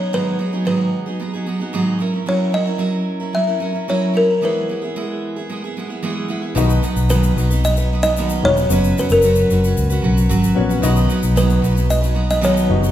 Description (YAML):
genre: acoustic pop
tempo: 112 BPM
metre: 4/4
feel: straight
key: B major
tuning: A4 = 440 Hz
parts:
  - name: buzzing kalimba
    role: melody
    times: 0.0-12.9 s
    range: A#4 to E5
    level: -20 LUFS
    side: equal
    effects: none
  - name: picked steel-string acoustic guitar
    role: accompaniment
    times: 0.0-12.9 s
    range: G#2 to B4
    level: -19 LUFS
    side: right 2 dB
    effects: none
  - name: felt-muted upright piano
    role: accompaniment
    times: 6.6-12.9 s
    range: B3 to D#5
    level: -25 LUFS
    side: left 7 dB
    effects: none
  - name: vintage muted fingered electric bass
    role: bass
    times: 6.6-12.9 s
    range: E1 to C#2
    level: -17 LUFS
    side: left 1 dB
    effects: none
  - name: egg shaker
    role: percussion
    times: 6.6-12.9 s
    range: none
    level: -32 LUFS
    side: left 7 dB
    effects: none
room: wet recital hall reverb, RT60 1.3 s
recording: recorded in a church or concert hall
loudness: -15 LUFS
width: side -12 dB against mid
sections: 0.0-6.6 A section; 6.6-12.9 B section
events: none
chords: 0.0 G#m7; 2.0 F#7; 4.4 E; 6.6 B; 8.7 F#sus4; 10.8 B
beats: | 0.13 0.66 1.20 1.74 | 2.27 2.81 3.35 3.88 | 4.42 4.95 5.49 6.02 | 6.56 7.09 7.63 8.16 | 8.70 9.23 9.76 10.30 | 10.83 11.36 11.90 12.43